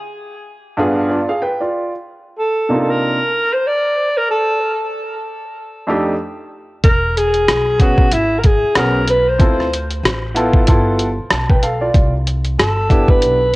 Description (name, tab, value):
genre	hip hop, jazz-hop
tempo	94 BPM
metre	4/4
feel	swing 58% on 16ths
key	unclear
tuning	A4 = 440 Hz
part	clear upright piano	accompaniment	0.8-13.4 s	F2 to A5	-18 LUFS	equal	cassette tape
part	breathy alto saxophone	melody	2.4-13.6 s	E4 to D5	-17 LUFS	equal	cassette tape, tape echo
part	upright bass	bass	6.8-13.6 s	E1 to D2	-21 LUFS	equal	none
part	boom bap sampler-style drum kit	drums	6.8-13.4 s	hi-hat, kick drum, rim click	-14 LUFS	equal	cassette tape
room	light reverb, small room ambience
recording	home recording on cassette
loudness	-13 LUFS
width	side -20 dB against mid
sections	0.0-13.6 A section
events	none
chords	0.5 G7b9; 1.7 Cm11; 4.3 F13; 6.8 E69; 9.4 Dm9; 10.7 G13; 11.9 Cmaj9